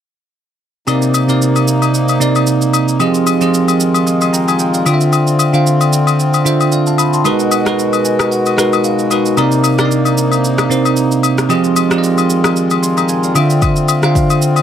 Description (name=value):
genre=amapiano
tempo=113 BPM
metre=4/4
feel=swing 55% on 16ths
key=unclear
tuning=A4 = 440 Hz
part: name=bell-like tine electric piano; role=accompaniment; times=0.9-14.6 s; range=C3 to Eb6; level=-12 LUFS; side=right 2 dB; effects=phaser
part: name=hand-pumped harmonium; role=sustained chords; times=0.9-14.6 s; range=Cb3 to Gb4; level=-20 LUFS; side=left 3 dB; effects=sidechain pumping
part: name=afro-pop drum kit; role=drums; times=0.9-14.6 s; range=kick drum, rim click, shaker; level=-20 LUFS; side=right 1 dB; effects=none
part: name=agogo bells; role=percussion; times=0.9-14.6 s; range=none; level=-20 LUFS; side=left 10 dB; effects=none
room=light reverb, small room ambience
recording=none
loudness=-11 LUFS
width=side -9 dB against mid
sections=0.9-14.6 A section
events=tine electric piano fill 7.8-9.4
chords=0.9 Cm7; 3.0 Fm7; 4.9 Dm7; 7.3 Abm7; 9.4 Cm7; 11.5 Fm7; 13.4 Dm7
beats=| 0.88 1.41 1.94 2.47 | 3.00 3.54 4.07 4.60 | 5.13 5.66 6.19 6.72 | 7.25 7.78 8.31 8.84 | 9.38 9.91 10.44 10.97 | 11.50 12.03 12.56 13.09 | 13.62 14.15